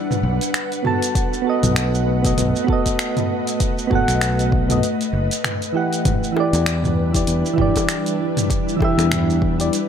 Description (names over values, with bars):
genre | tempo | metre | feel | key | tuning
sunset chillout | 98 BPM | 4/4 | swing 57% on 16ths | unclear | A4 = 441 Hz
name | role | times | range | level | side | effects
ethereal airy pad | sustained chords | 0.0-9.9 s | G3 to F#5 | -24 LUFS | left 1 dB | ensemble chorus, built-in reverb, tremolo
deep house drum kit | drums | 0.1-9.9 s | finger snaps, hi-hat, shaker, toms | -23 LUFS | equal | none
overdriven fingered electric bass | bass | 0.2-9.7 s | F#1 to E2 | -20 LUFS | equal | none
soft electric-piano-like synth keys | accompaniment | 0.8-9.7 s | E3 to A5 | -22 LUFS | moving between left 3 dB and right 5 dB | chorus, auto-pan, digital delay
electronic kick drum | drums | 1.2-9.6 s | none | -22 LUFS | equal | none
bongos | percussion | 6.4-9.1 s | none | -29 LUFS | left 3 dB | none
room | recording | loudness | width
light reverb, digital ambience | none | -17 LUFS | side -8 dB against mid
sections
0.0-9.9 A section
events
none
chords
0.0 Em7 (rootless); 0.8 B7; 6.1 Em7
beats
0.54 | 1.16 1.77 2.38 2.99 | 3.60 4.22 4.83 5.44 | 6.05 6.67 7.28 7.89 | 8.50 9.12 9.73